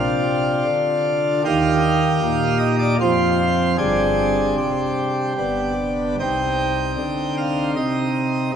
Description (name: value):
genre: classical, chorale-style piece for pipe organ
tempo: 76 BPM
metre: 3/4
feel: rubato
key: C minor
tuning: A4 = 440 Hz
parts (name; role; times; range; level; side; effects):
- pipe organ, plenum; solo; 0.0-8.5 s; G1 to G5; -18 LUFS; equal; none
room: wet church reverb, RT60 3.0 s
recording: none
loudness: -18 LUFS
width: side -8 dB against mid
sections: 0.0-8.6 A section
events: none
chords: 0.0 Bb (rootless); 1.5 Eb; 3.0 F5; 3.8 Gsus4; 5.4 G; 6.2 Cm